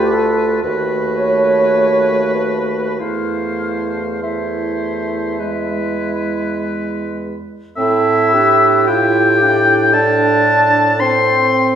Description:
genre	classical, slow romantic movement for wind quintet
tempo	45-58 BPM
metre	4/4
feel	rubato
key	A minor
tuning	A4 = 441 Hz
part	mellow baroque flute	melody	0.0-11.8 s	E4 to F5	-20 LUFS	left 1 dB	none
part	clear oboe	second line	0.0-11.8 s	B4 to C6	-17 LUFS	left 2 dB	none
part	mellow French horn	accompaniment	0.0-11.8 s	G#3 to A4	-21 LUFS	right 2 dB	none
part	warm clarinet	accompaniment	0.0-11.8 s	C4 to F#4	-23 LUFS	right 5 dB	none
part	dark bassoon	bass	0.0-11.8 s	D2 to A2	-21 LUFS	right 2 dB	none
room	wet recital hall reverb, RT60 1.6 s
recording	heard from further back in the room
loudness	-13 LUFS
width	side -9 dB against mid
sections	0.0-7.8 A section; 7.8-11.8 B section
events	none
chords	0.0 Bm7b5/D; 0.6 B7/D#; 3.0 Am/E; 5.4 E; 7.8 Am

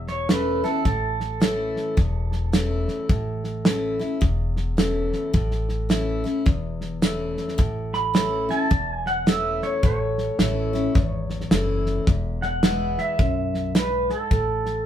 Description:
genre	honky-tonk and classic country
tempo	107 BPM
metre	4/4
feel	swing 62% on 8ths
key	A major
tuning	A4 = 439 Hz
part	picked steel-string acoustic guitar	accompaniment	0.0-14.9 s	E2 to E4	-27 LUFS	left 2 dB	none
part	upright bass	bass	0.0-14.9 s	E1 to B1	-28 LUFS	equal	none
part	pedal steel guitar	second line	0.1-2.8, 7.9-14.9 s	A4 to B5	-26 LUFS	right 2 dB	none
part	damped 70s drum kit	drums	0.1-14.7 s	hi-hat, kick drum, snare drum	-21 LUFS	equal	none
room	moderate studio reverb, RT60 0.6 s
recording	band playing live in one room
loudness	-21 LUFS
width	side -10 dB against mid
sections	0.0-14.9 A section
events	pedal steel guitar solo 0.0-14.9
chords	0.0 A; 12.1 E; 14.3 N.C.

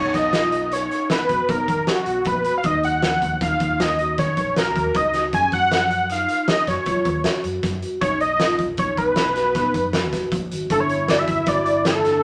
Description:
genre	progressive instrumental, band music in an uneven meter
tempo	156 BPM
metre	7/4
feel	straight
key	unclear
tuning	A4 = 440 Hz
part	unison lead	melody	0.0-12.2 s	F#4 to G#5	-22 LUFS	equal	none
part	vibraphone with medium mallets	arpeggios	0.0-12.1 s	E#3 to F#4	-30 LUFS	equal	none
part	fretless electric bass	bass	0.0-12.2 s	G1 to F#3	-32 LUFS	equal	none
part	oversized low-tuned drum kit	drums	0.1-12.1 s	hi-hat, kick drum, snare drum	-27 LUFS	equal	none
part	mellow flugelhorn	second line	10.7-12.2 s	E4	-30 LUFS	equal	none
room	wet studio reverb, RT60 0.6 s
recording	none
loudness	-21 LUFS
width	mono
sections	0.0-10.7 A section; 10.7-12.2 B section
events	none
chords	0.0 B; 2.6 D#m; 5.3 F#5; 8.0 B; 10.7 Gsus2

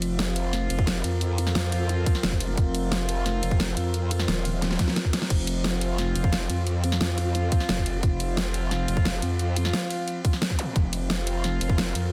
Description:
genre	dark technical drum and bass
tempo	176 BPM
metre	4/4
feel	straight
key	unclear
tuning	A4 = 440 Hz
part	metallic inharmonic drone	sustained chords	0.0-12.1 s	F3 to Bb4	-37 LUFS	equal	chorus, built-in reverb, sidechain pumping
part	warm brass ensemble	stabs	0.0-12.1 s	F3 to F4	-35 LUFS	equal	tape echo
part	growl bass	bass	0.0-12.1 s	Eb1 to F2	-29 LUFS	equal	chorus, tube saturation, sidechain pumping
part	dubstep drum kit	drums	0.0-12.0 s	crash cymbal, hi-hat, ride cymbal, snare drum	-31 LUFS	equal	none
part	electronic kick drum	drums	0.8-11.8 s	none	-26 LUFS	equal	overdrive
part	zap	sound effects	10.6-10.7 s	none	-39 LUFS	equal	none
room	light reverb, digital ambience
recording	dense, heavily limited modern master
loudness	-25 LUFS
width	mono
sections	0.0-12.1 A section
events	drum fill 4.6-5.3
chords	0.0 F5

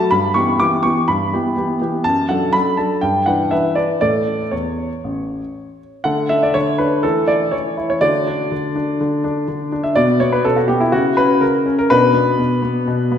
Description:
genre	classical-period piano sonatina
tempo	123 BPM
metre	4/4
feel	straight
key	D major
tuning	A4 = 441 Hz
part	warm grand piano	solo	0.0-13.2 s	A1 to D6	-15 LUFS	equal	none
room	wet recital hall reverb, RT60 1.8 s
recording	minimal, uncompressed stereo recording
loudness	-15 LUFS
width	side -8 dB against mid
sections	0.0-6.1 A section; 6.1-13.2 B section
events	none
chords	0.1 Em/G; 2.0 D/F#; 3.0 Em7/G; 4.0 A; 6.1 D5; 7.0 A5/E; 8.0 D; 10.0 B5; 10.9 C#m6; 11.9 Bm

